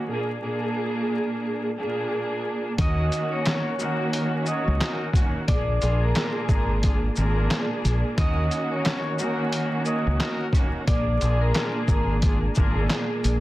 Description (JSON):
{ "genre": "hip hop, boom-bap hip-hop", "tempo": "89 BPM", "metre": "4/4", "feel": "swing 59% on 16ths", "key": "unclear", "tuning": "A4 = 440 Hz", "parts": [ { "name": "warm studio string section", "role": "accompaniment", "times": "0.0-13.4 s", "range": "Bb2 to Ab4", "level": "-27 LUFS", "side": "right 1 dB", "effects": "high-pass filter, low-pass filter" }, { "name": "vibraphone with hard mallets", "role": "melody", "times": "2.8-12.1 s", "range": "Bb4 to Eb6", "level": "-31 LUFS", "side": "equal", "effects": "high-pass filter, low-pass filter, tape echo" }, { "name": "tonewheel organ", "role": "sustained chords", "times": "2.8-13.4 s", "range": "Eb3 to Gb4", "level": "-37 LUFS", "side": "left 1 dB", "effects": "none" }, { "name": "bright trumpet section", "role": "stabs", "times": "2.8-13.1 s", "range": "D4 to Eb5", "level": "-35 LUFS", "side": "left 3 dB", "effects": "high-pass filter, low-pass filter, tape echo" }, { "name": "deep dub fingered electric bass", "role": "bass", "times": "2.8-13.4 s", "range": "Ab1 to Eb2", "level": "-23 LUFS", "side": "equal", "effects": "none" }, { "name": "trip hop sampler-style drum kit", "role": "drums", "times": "2.8-13.4 s", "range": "handclaps, hi-hat, kick drum, shaker, snare drum", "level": "-24 LUFS", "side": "equal", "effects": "none" } ], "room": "small room ambience", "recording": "dense, heavily limited modern master, vinyl crackle", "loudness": "-22 LUFS", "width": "side -16 dB against mid", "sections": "0.0-2.8 A section; 2.8-13.4 B section", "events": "none", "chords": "0.1 Bb7; 2.8 Ebm7; 5.5 Bb7; 8.2 Ebm7; 10.9 Bb7", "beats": "| 0.09 0.76 1.44 2.11 | 2.79 3.46 4.13 4.81 | 5.48 6.16 6.83 7.51 | 8.18 8.85 9.53 10.20 | 10.88 11.55 12.22 12.90" }